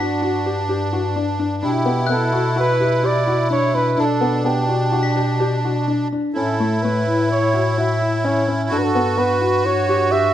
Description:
contemporary instrumental, chamber music in an uneven meter; 128 BPM; 5/4; straight; G lydian; A4 = 440 Hz
mellow flugelhorn; melody; 0.0-10.3 s; F#4 to E5; -21 LUFS; right 3 dB
accordion; second line; 0.0-10.3 s; D4 to F#4; -22 LUFS; right 2 dB; light tremolo tuning
felt-muted upright piano; arpeggios; 0.0-10.3 s; A3 to G4; -23 LUFS; left 3 dB
breathy bass clarinet; bass; 0.0-10.3 s; G2 to B2; -23 LUFS; left 1 dB
glockenspiel with hard plastic mallets; texture; 0.0-6.3 s; F#6 to B6; -32 LUFS; left 4 dB
light reverb; close, detailed microphones; -16 LUFS; side -11 dB against mid
0.0-10.3 A section
0.0 Gmaj7; 1.6 Gmaj7/B; 6.4 Aadd9; 8.7 Gmaj7

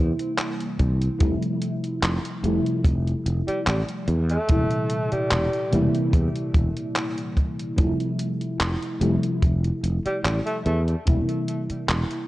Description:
vaporwave; 73 BPM; 4/4; swing 53% on 16ths; F major; A4 = 436 Hz
mellow FM electric piano; accompaniment; 0.0-12.3 s; Bb2 to E4; -26 LUFS; equal; ensemble chorus, tape echo
sustaining fretless electric bass; bass; 0.0-12.0 s; E1 to E2; -24 LUFS; equal; tube saturation
detuned 8-bit digital drum machine; drums; 0.2-12.3 s; handclaps, hi-hat; -29 LUFS; equal
kick drum; drums; 0.8-11.2 s; -21 LUFS; equal
warm tenor saxophone; melody; 3.5-10.8 s; G3 to A3; -29 LUFS; equal; vintage 12-bit sampler grit, tape echo
light reverb, small room ambience; cassette tape; -21 LUFS; side -17 dB against mid
0.0-12.3 A section
0.0 C7/E; 1.2 Fmaj9; 4.1 C7/E; 7.8 Fmaj9; 10.7 C7/E

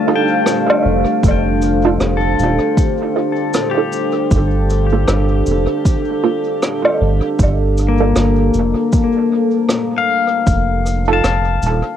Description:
ambient dub; 78 BPM; 4/4; swing 59% on 16ths; G minor; A4 = 442 Hz
deep dark ambient pad; sustained chords; 0.0-12.0 s; D4 to F5; -19 LUFS; right 2 dB; chorus, built-in reverb
pedal steel guitar; arpeggios; 0.0-12.0 s; A3 to A5; -19 LUFS; left 7 dB; analog delay
filtered dub chord stab; stabs; 0.1-11.2 s; Bb3 to A4; -21 LUFS; right 8 dB; lush chorus, cassette tape, dub echo, plate reverb
rim click, cabasa and woodblock; drums; 0.5-11.8 s; -20 LUFS; equal; cassette tape, dub echo
soft dub sub bass; bass; 0.8-11.8 s; Eb1 to G1; -16 LUFS; equal; tube saturation
electronic kick drum; drums; 1.2-10.7 s; -15 LUFS; equal; overdrive, cassette tape
moderate booth ambience, RT60 0.2 s; home recording on cassette; -13 LUFS; side -10 dB against mid
0.0-12.0 A section
0.0 F7; 4.3 Gm9; 10.5 F7

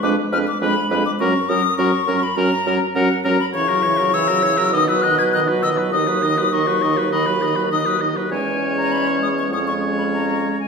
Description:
quick classical-period movement for wind quintet; 101 BPM; 4/4; straight; F# major, B major from 3.5 s; A4 = 439 Hz
silver concert flute; melody; 0.0-10.7 s; F#5 to G#6; -21 LUFS; left 5 dB
clear oboe; second line; 0.0-10.6 s; A#4 to D#5; -24 LUFS; left 2 dB
clear French horn; accompaniment; 0.0-10.6 s; D#3 to Ab3; -25 LUFS; right 1 dB
dark clarinet; accompaniment; 0.0-10.6 s; C#4 to F#4; -24 LUFS; right 3 dB
mellow bassoon; bass; 0.0-10.6 s; D#2 to C#3; -23 LUFS; right 3 dB
wet recital hall reverb, RT60 1.3 s; recorded in a church or concert hall; -16 LUFS; side -5 dB against mid
0.0-10.7 A section
0.0 Fdim7; 1.2 F#; 3.5 F#7/C#; 4.7 B; 5.9 B/D#; 8.3 C#m/E; 9.5 C#/E#

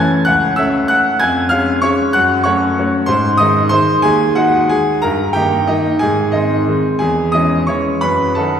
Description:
classical, piano waltz; 166-202 BPM; 3/4; rubato; C# minor; A4 = 440 Hz
bright baby grand piano; solo; 0.0-8.6 s; C#2 to G#6; -12 LUFS; equal
wet concert hall reverb, RT60 2.5 s; heard from further back in the room; -12 LUFS; side -8 dB against mid
0.0-8.6 A section
0.0 F#m7; 1.2 C#/E#; 2.2 F#m; 3.1 G#; 5.0 D#/G; 6.0 G#; 7.0 C#m/E; 8.0 D#dim/F#

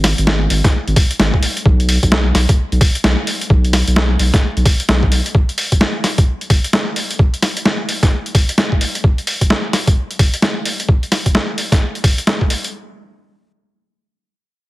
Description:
UK garage, two-step garage; 130 BPM; 4/4; swing 62% on 16ths; A4 = 440 Hz
saturated sub bass; bass; 0.0-5.2 s; G#1 to B1; -15 LUFS; equal
boom bap sampler-style drum kit; drums; 0.0-12.7 s; hi-hat, snare drum; -17 LUFS; equal; overdrive
electronic kick drum; drums; 0.6-12.5 s; -13 LUFS; equal; overdrive
light reverb, digital ambience; heavily compressed radio sound; -13 LUFS; side -18 dB against mid
0.0-12.7 A section; 12.7-14.7 B section

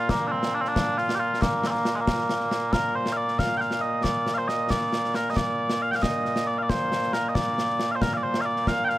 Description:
scottish traditional, Scottish pipe music; 91 BPM (dotted quarters); 6/8; straight; Bb major; A4 = 440 Hz
mellow small bagpipes; melody; 0.0-9.0 s; Bb2 to G5; -24 LUFS; equal
concert snare drum and concert bass drum; drums; 0.1-8.9 s; -29 LUFS; left 1 dB
light reverb; -23 LUFS; side -16 dB against mid
0.0-2.7 A section; 2.7-9.0 A section

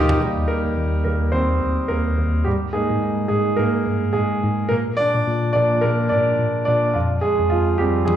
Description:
piano-driven pop; 107 BPM; 4/4; swing 56% on 16ths; Eb major; A4 = 440 Hz
clear concert grand piano; accompaniment; 0.0-8.2 s; F3 to D5; -19 LUFS; right 1 dB; plate reverb, slapback echo
bell-like tine electric piano; bass; 0.0-8.2 s; D2 to Bb2; -22 LUFS; left 1 dB; analog chorus
toms; drums; 0.1-0.2, 8.1-8.2 s; -23 LUFS; equal
light reverb; live gig heard through the venue's PA, recital hall reverb; -18 LUFS; side -10 dB against mid
0.2-8.2 A section
drum fill 0.0; grand piano solo 0.2-8.2
0.2 Eb; 2.5 Absus2; 4.7 Bb; 7.0 Fm

